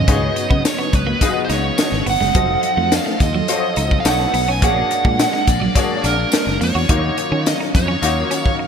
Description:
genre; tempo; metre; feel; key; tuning
polished 1980s jazz-funk pop; 106 BPM; 4/4; straight; unclear; A4 = 440 Hz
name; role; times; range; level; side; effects
nasal lead guitar with a parked wah; melody; 0.0-8.6 s; A#4 to G#5; -21 LUFS; right 4 dB; overdrive
bright grand piano; accompaniment; 0.0-8.7 s; A#3 to D#5; -23 LUFS; left 5 dB; ensemble chorus
string machine, violins; sustained chords; 0.0-8.7 s; C#3 to E#5; -27 LUFS; left 1 dB; ensemble chorus
electric guitar at the edge of break-up; riff; 0.0-8.6 s; Gb3 to F#4; -26 LUFS; right 4 dB; wide subtle chorus
fretless electric bass; bass; 0.0-8.2 s; F1 to D#3; -21 LUFS; equal; none
crisp fusion drum kit; drums; 0.1-8.6 s; hi-hat, kick drum, snare drum; -19 LUFS; left 1 dB; gated reverb
tambourine; percussion; 0.1-8.4 s; none; -33 LUFS; left 8 dB; none
room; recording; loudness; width
moderate lush hall reverb, RT60 2.1 s; bright 1980s-style digital production; -15 LUFS; side -7 dB against mid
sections
0.0-8.7 A section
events
none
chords
0.1 C#9sus4; 2.4 F7b9; 4.1 B9; 4.6 A#7alt; 6.9 D#m9

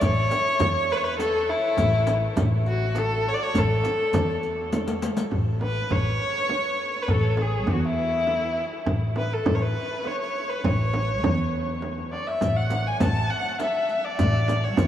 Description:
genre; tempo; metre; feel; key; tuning
Persian modal ensemble; 102 BPM; 3/4; straight; A dastgah mahur; A4 = 440 Hz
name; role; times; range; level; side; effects
clear kamancheh; melody; 0.0-14.9 s; E4 to A5; -25 LUFS; left 1 dB; none
upright bass; bass; 0.0-14.9 s; A1 to E2; -26 LUFS; equal; none
frame drum; percussion; 0.0-14.9 s; none; -30 LUFS; right 3 dB; none
riq; percussion; 0.0-5.3, 12.4-14.9 s; none; -34 LUFS; left 4 dB; none
tombak; percussion; 0.0-14.9 s; none; -31 LUFS; left 1 dB; none
room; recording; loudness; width
wet huge ambient reverb, RT60 7.7 s; in a vast, echoing space; -22 LUFS; side -11 dB against mid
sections
0.0-5.3 A section; 5.3-14.9 B section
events
drum fill 4.7-5.3, 11.8-12.4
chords
none

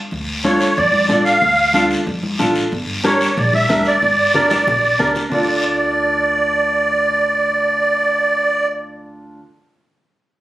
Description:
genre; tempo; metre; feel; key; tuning
latin, cumbia; 184 BPM; 4/4; straight; D harmonic minor; A4 = 439 Hz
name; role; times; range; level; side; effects
upright bass; bass; 0.1-9.4 s; G1 to F2; -27 LUFS; equal; none
guiro; percussion; 0.1-5.4 s; none; -26 LUFS; left 1 dB; none
musette accordion; melody; 0.4-8.7 s; C#5 to F5; -15 LUFS; right 1 dB; none
clear upright piano; accompaniment; 0.4-9.4 s; D4 to Bb4; -21 LUFS; equal; none
congas; percussion; 0.4-5.4 s; none; -24 LUFS; left 1 dB; none
room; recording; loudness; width
moderate large studio reverb, RT60 0.9 s; recorded on a phone in the room, studio reverb; -14 LUFS; side -16 dB against mid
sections
0.1-5.3 A section; 5.3-7.9 B section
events
drum fill 4.0-5.3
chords
0.1 Dm; 2.7 Gm; 5.3 Dm

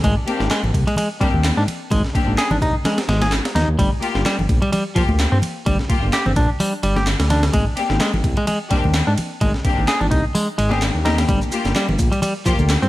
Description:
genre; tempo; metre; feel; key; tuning
breakbeat, breaks; 128 BPM; 4/4; swing 55% on 16ths; unclear; A4 = 440 Hz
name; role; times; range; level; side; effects
clean electric guitar; riff; 0.0-12.9 s; F3 to Ab4; -22 LUFS; equal; tube saturation, digital delay
dark detuned saw bass; bass; 0.0-12.9 s; G1 to Ab2; -20 LUFS; equal; none
breakbeat sampler-style drum kit; drums; 0.0-12.8 s; hi-hat, kick drum, ride cymbal, snare drum; -22 LUFS; equal; small room reverb
congas; percussion; 0.0-12.7 s; none; -27 LUFS; left 1 dB; none
clear symphonic string section; stabs; 0.3-12.5 s; Bb3 to G4; -25 LUFS; left 3 dB; vintage 12-bit sampler grit, low-pass filter, digital delay
electronic handclaps and shaker; drums; 0.5-12.9 s; none; -28 LUFS; equal; small room reverb
room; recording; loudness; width
little or no reverb; vinyl crackle; -16 LUFS; side -16 dB against mid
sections
0.0-12.9 A section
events
none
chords
0.0 Ab; 3.8 Gm; 7.5 Abmaj9#11; 11.3 Gm7

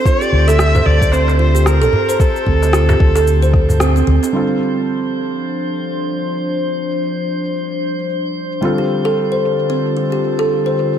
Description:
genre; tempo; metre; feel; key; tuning
organic downtempo; 112 BPM; 4/4; swing 59% on 16ths; unclear; A4 = 440 Hz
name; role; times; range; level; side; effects
rich kamancheh; melody; 0.0-3.8 s; A4 to E5; -20 LUFS; equal; ping-pong delay, shimmer reverb
kalimba; arpeggios; 0.0-4.3, 8.6-11.0 s; C4 to C5; -18 LUFS; right 2 dB; tape echo, shimmer reverb
drifting glass-harmonics texture; texture; 0.0-11.0 s; C5; -26 LUFS; equal; chorus, built-in reverb, shimmer reverb
electronic cabasa and rim click; drums; 0.1-11.0 s; none; -22 LUFS; equal; low-pass filter on perc, studio reverb, low-pass filter on snare
electronic kick drum; drums; 0.1-3.7 s; none; -14 LUFS; equal; studio reverb
fretless electric bass; bass; 0.3-4.2 s; D2; -13 LUFS; equal; ensemble chorus, sidechain pumping
darbuka; percussion; 0.5-4.3 s; none; -22 LUFS; equal; none
felt-muted upright piano; accompaniment; 4.3-11.0 s; D3 to A4; -23 LUFS; equal; sidechain pumping, tape echo, shimmer reverb
airy breathy pad; sustained chords; 5.2-11.0 s; D3 to C5; -21 LUFS; left 2 dB; chorus, sidechain pumping, shimmer reverb
room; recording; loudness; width
moderate echo chamber reverb, RT60 1.7 s, small room reverb; dark, warm production; -13 LUFS; side -9 dB against mid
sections
0.0-4.3 A section; 4.3-11.0 B section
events
band accent 3.8; filter sweep on analog synth pad 4.3-11.0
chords
0.1 Fadd9/D

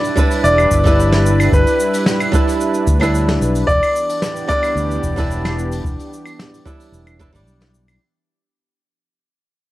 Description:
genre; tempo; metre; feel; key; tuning
sunset chillout; 111 BPM; 4/4; straight; E minor; A4 = 440 Hz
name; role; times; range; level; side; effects
bright concert grand piano; melody; 0.0-7.4 s; B4 to D5; -18 LUFS; left 1 dB; tape echo
lush unison pad; sustained chords; 0.0-8.0 s; E3 to B4; -23 LUFS; right 1 dB; chorus
soft brush drum kit; drums; 0.0-8.0 s; claves, hi-hat, shaker, snare drum; -23 LUFS; equal; none
flamenco guitar; accompaniment; 0.2-8.0 s; G3 to D5; -20 LUFS; moving between left 3 dB and right 4 dB; auto-pan, tape echo
electronic kick drum; drums; 0.2-7.3 s; none; -17 LUFS; equal; none
fingered electric bass; bass; 0.4-8.0 s; E1 to D2; -18 LUFS; equal; none
room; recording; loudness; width
studio reverb; dry, gritty hardware recording; -13 LUFS; side -16 dB against mid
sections
0.0-8.0 A section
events
fade-out 2.2-8.0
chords
0.0 Em7

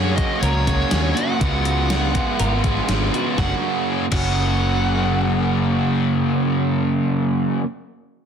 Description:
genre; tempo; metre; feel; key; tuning
rock, shoegaze and dream pop; 122 BPM; 4/4; straight; F# major; A4 = 439 Hz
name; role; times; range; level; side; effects
nasal lead guitar with a parked wah; melody; 0.0-7.6 s; C#5 to F#5; -28 LUFS; equal; overdrive, slapback echo
twelve-string electric guitar; arpeggios; 0.0-4.8 s; F#4 to A#4; -31 LUFS; right 3 dB; analog chorus, slapback echo
overdriven electric guitar; riff; 0.0-7.7 s; F#2 to E#4; -23 LUFS; left 10 dB; lush chorus
overdriven electric guitar; riff; 0.0-7.7 s; F#2 to F#4; -22 LUFS; right 11 dB; reverse reverb
vintage muted fingered electric bass; bass; 0.0-7.6 s; F#1 to F#2; -23 LUFS; equal; none
gated 80s digital drum machine; drums; 0.2-4.3 s; crash cymbal, hi-hat, kick drum, snare drum; -24 LUFS; equal; gated reverb, gated reverb snare, overdrive
room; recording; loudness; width
little or no reverb; dense, heavily limited modern master; -17 LUFS; side -7 dB against mid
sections
0.0-3.4 A section; 3.4-7.3 B section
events
none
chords
0.0 F#; 1.4 C#7sus4; 3.4 F#

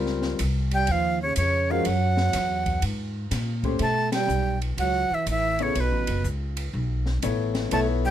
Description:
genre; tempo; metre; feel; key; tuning
modal jazz; 123 BPM; 4/4; swing 67% on 8ths; unclear; A4 = 438 Hz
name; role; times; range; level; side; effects
warm concert grand piano; accompaniment; 0.0-8.1 s; G3 to C#5; -27 LUFS; left 6 dB; none
upright bass; bass; 0.0-8.1 s; F#1 to B2; -26 LUFS; equal; none
open jazz drum kit; drums; 0.1-7.9 s; hi-hat, kick drum, ride cymbal, snare drum; -34 LUFS; equal; none
breathy bright jazz flute; melody; 0.7-8.1 s; B4 to A5; -25 LUFS; equal; none
breathy trombone; second line; 0.7-8.1 s; B2 to A3; -29 LUFS; right 6 dB; none
room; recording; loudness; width
little or no reverb; close, detailed microphones; -22 LUFS; side -11 dB against mid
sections
0.0-3.8 A section; 3.8-8.1 B section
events
band accent 4.1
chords
0.0 Bbmadd9; 1.9 Gb9; 3.8 B9sus4

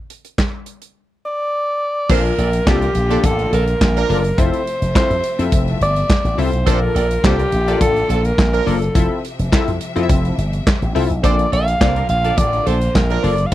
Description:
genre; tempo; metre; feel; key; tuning
early-eighties boogie funk; 105 BPM; 4/4; straight; unclear; A4 = 440 Hz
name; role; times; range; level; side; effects
modern studio drum kit; drums; 0.1-13.5 s; crash cymbal, handclaps, hi-hat, kick drum, snare drum; -18 LUFS; equal; none
breathy alto saxophone; melody; 1.3-13.5 s; G4 to F5; -20 LUFS; equal; slapback echo
warm horn section; second line; 2.1-13.3 s; F3 to D5; -23 LUFS; right 9 dB; none
funky polysynth comp; accompaniment; 2.1-13.5 s; Bb3 to E5; -22 LUFS; left 5 dB; chorus
bright studio string section; sustained chords; 2.1-13.5 s; C3 to E5; -30 LUFS; left 2 dB; none
slap bass with an envelope filter; bass; 2.1-13.5 s; F1 to F2; -19 LUFS; equal; none
room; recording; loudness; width
little or no reverb; dry, close 1970s-style studio recording; -14 LUFS; side -14 dB against mid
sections
0.0-2.1 A section; 2.1-13.5 B section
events
none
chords
0.0 N.C.; 2.1 Bbmaj7; 4.4 Fmaj7; 6.7 Bbmaj7; 9.0 Fmaj7; 11.2 Bbmaj7

